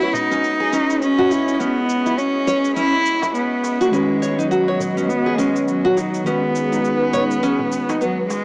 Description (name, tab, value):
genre	organic downtempo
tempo	103 BPM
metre	4/4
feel	swing 58% on 16ths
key	unclear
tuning	A4 = 440 Hz
part	rich cello	melody	0.0-8.4 s	F#3 to E4	-19 LUFS	equal	cassette tape, shimmer reverb, tape echo
part	muted felt-like synth keys	accompaniment	0.0-8.4 s	D#3 to B4	-26 LUFS	equal	chorus, cassette tape, shimmer reverb
part	warm analog pad	sustained chords	0.0-8.4 s	G#3 to D#5	-27 LUFS	equal	chorus, cassette tape, shimmer reverb
part	nylon-string guitar	arpeggios	0.0-8.2 s	B3 to C#5	-21 LUFS	equal	cassette tape, shimmer reverb
part	darbuka	percussion	0.0-8.4 s	none	-35 LUFS	equal	none
part	bronze singing bowl	texture	0.0-8.4 s	none	barely audible	none	none
part	shaker	drums	0.2-8.4 s	none	-36 LUFS	equal	low-pass filter on perc
room	moderate spring reverb, RT60 2.5 s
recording	home recording on cassette, small speaker sound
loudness	-16 LUFS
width	side -33 dB against mid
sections	0.0-8.4 A section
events	none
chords	0.0 C#7(no3); 3.9 G#m7